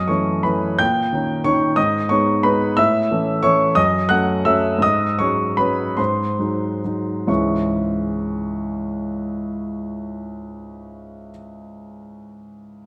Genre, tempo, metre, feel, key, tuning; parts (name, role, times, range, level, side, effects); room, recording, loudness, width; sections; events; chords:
classical, romantic character piece for solo piano; 43-63 BPM (dotted quarters); 6/8; rubato; C# minor; A4 = 440 Hz
warm concert grand piano; solo; 0.0-12.9 s; C#2 to G6; -20 LUFS; equal
moderate recital hall reverb, RT60 1.9 s; -20 LUFS; mono
0.0-7.3 A section; 7.3-12.3 B section
slowing down 1.8-7.3
0.0 F#m7; 0.8 D#7/A#; 1.8 G#m; 2.8 A; 3.8 D#m7b5/F#; 4.8 G#7sus4; 6.0 G#7; 7.3 C#m